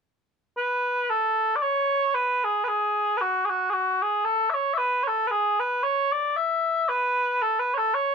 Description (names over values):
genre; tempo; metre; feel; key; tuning
celtic folk; 114 BPM; 3/4; swing 55% on 8ths; unclear; A4 = 441 Hz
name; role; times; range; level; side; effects
mellow small bagpipes; melody; 0.6-8.1 s; F#4 to E5; -22 LUFS; equal; none
room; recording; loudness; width
light reverb; dark, warm production; -22 LUFS; side -6 dB against mid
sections
0.6-8.1 A section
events
none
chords
none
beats
| 0.56 1.09 1.61 | 2.14 2.67 3.19 | 3.72 4.25 4.77 | 5.30 5.83 6.35 | 6.88 7.41 7.94